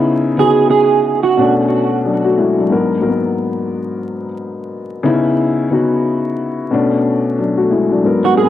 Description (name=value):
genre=hip hop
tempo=90 BPM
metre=4/4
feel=swing 60% on 16ths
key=unclear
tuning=A4 = 440 Hz
part: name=dark concert grand piano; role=accompaniment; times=0.0-8.5 s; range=G#2 to A#4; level=-14 LUFS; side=left 3 dB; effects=high-pass filter, low-pass filter, cassette tape
part: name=semi-hollow electric guitar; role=melody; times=0.4-1.5, 8.2-8.5 s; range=F#4 to G#4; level=-14 LUFS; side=right 7 dB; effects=ensemble chorus, high-pass filter, low-pass filter, cassette tape, analog delay
room=moderate spring reverb, RT60 2.8 s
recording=home recording on cassette, vinyl crackle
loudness=-12 LUFS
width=side -12 dB against mid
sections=0.0-8.5 A section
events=none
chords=0.0 C#m9; 1.4 Bm9; 2.7 G#m9; 5.0 C#m9; 6.7 Bm9